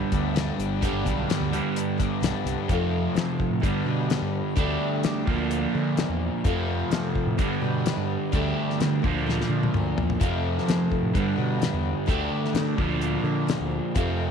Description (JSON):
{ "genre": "classic rock", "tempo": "128 BPM", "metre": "4/4", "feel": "straight", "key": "unclear", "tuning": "A4 = 440 Hz", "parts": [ { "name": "picked old ladder-braced acoustic guitar", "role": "accompaniment", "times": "0.0-14.3 s", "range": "G2 to B4", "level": "-36 LUFS", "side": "left 11 dB", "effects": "none" }, { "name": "crunchy overdriven guitar", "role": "riff", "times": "0.0-14.3 s", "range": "F2 to D4", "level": "-27 LUFS", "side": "right 10 dB", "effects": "phaser" }, { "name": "overdriven semi-hollow guitar", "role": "riff", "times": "0.0-14.3 s", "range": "F2 to D4", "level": "-30 LUFS", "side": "left 13 dB", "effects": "none" }, { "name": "growling fingered electric bass", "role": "bass", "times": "0.0-14.3 s", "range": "G1 to F3", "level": "-29 LUFS", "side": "equal", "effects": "overdrive" }, { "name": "damped 70s drum kit", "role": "drums", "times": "0.1-14.1 s", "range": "hi-hat, kick drum, snare drum, toms", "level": "-28 LUFS", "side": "left 2 dB", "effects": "none" } ], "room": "light reverb", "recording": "1960s-style stereo with parts hard left and right", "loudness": "-23 LUFS", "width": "side -7 dB against mid", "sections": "0.0-2.7 A section; 2.7-14.3 B section", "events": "drum fill 9.3-10.2", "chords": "0.0 G; 2.7 F; 3.6 G; 4.6 Dsus4; 5.3 Bb/D; 6.5 F; 7.4 G; 8.3 Dsus4; 9.0 Bb/D; 10.2 F; 11.2 G; 12.1 Dsus4; 12.8 Bb/D", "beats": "0.35 | 0.82 1.28 1.75 2.22 | 2.69 3.16 3.63 4.10 | 4.57 5.04 5.51 5.98 | 6.45 6.92 7.39 7.86 | 8.33 8.80 9.27 9.74 | 10.21 10.68 11.15 11.62 | 12.09 12.56 13.03 13.49 | 13.96" }